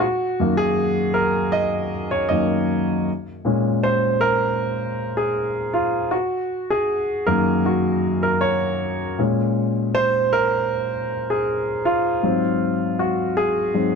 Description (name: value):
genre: soul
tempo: 79 BPM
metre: 4/4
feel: swing 54% on 16ths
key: Bb minor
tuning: A4 = 438 Hz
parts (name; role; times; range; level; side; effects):
- warm grand piano; solo; 0.0-14.0 s; Gb2 to Eb5; -19 LUFS; equal; none
room: light reverb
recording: dark, warm production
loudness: -19 LUFS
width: side -5 dB against mid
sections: 0.0-14.0 A section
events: grand piano solo 0.0-14.0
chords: 0.0 Gb6; 3.1 Bbm7; 6.1 Gb6; 9.2 Bbm7; 12.2 Ab7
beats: | 0.02 0.79 1.55 2.31 | 3.08 3.84 4.61 5.37 | 6.13 6.90 7.66 8.42 | 9.18 9.94 10.71 11.46 | 12.22 12.98 13.74